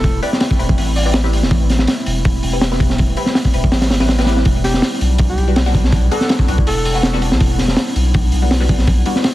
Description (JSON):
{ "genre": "drum and bass, jungle", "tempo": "163 BPM", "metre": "4/4", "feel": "swing 53% on 16ths", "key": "A minor", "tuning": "A4 = 440 Hz", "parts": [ { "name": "breathy alto saxophone", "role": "melody", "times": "0.0-1.1, 4.6-7.2 s", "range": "G4 to D5", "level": "-25 LUFS", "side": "equal", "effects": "dub echo" }, { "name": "warbly tape-like pad", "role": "sustained chords", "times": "0.0-9.3 s", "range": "G3 to E4", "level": "-26 LUFS", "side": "right 1 dB", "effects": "chorus, built-in reverb" }, { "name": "saturated sub bass", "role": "bass", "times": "0.0-9.0 s", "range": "E1 to B1", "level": "-17 LUFS", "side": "equal", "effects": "none" }, { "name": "crunchy breakbeat drum kit", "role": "drums", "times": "0.0-9.3 s", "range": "hi-hat, kick drum, snare drum", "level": "-15 LUFS", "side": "equal", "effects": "none" }, { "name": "filtered dub chord stab", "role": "stabs", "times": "0.2-9.3 s", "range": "G3 to B4", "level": "-25 LUFS", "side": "left 2 dB", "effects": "phaser, wide subtle chorus, dub echo" } ], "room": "small room ambience", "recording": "dense, heavily limited modern master, vinyl crackle", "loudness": "-13 LUFS", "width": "side -16 dB against mid", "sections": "0.0-9.3 A section", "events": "none", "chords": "0.0 Am7; 4.5 Em7" }